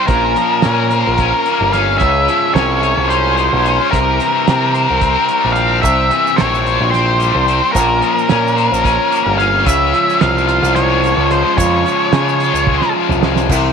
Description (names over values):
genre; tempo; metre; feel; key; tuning
psychedelic rock; 219 BPM (eighths); 7/8; straight; unclear; A4 = 440 Hz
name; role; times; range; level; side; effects
octave-fuzz lead guitar; melody; 0.0-12.9 s; Bb4 to F5; -15 LUFS; right 1 dB; distortion, slapback echo
combo organ; sustained chords; 0.0-13.7 s; E3 to C5; -23 LUFS; right 11 dB; none
overdriven electric guitar; riff; 0.0-13.7 s; Bb2 to Db5; -17 LUFS; left 13 dB; harmonic tremolo
growling picked electric bass; bass; 0.1-13.7 s; G1 to Db3; -17 LUFS; right 1 dB; overdrive
cloth-damped thuddy drum kit; drums; 0.1-13.6 s; crash cymbal, hi-hat, kick drum, snare drum, toms; -18 LUFS; right 4 dB; none
egg shaker; percussion; 5.8-13.6 s; none; -30 LUFS; right 19 dB; none
room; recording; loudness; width
moderate echo chamber reverb, RT60 1.9 s, small room ambience; 1960s-style stereo with parts hard left and right; -11 LUFS; side -6 dB against mid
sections
0.0-13.5 A section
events
drum fill 12.7-13.5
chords
0.1 Bbmadd9; 2.0 Db; 3.9 C; 7.8 Bbmadd9; 9.7 Db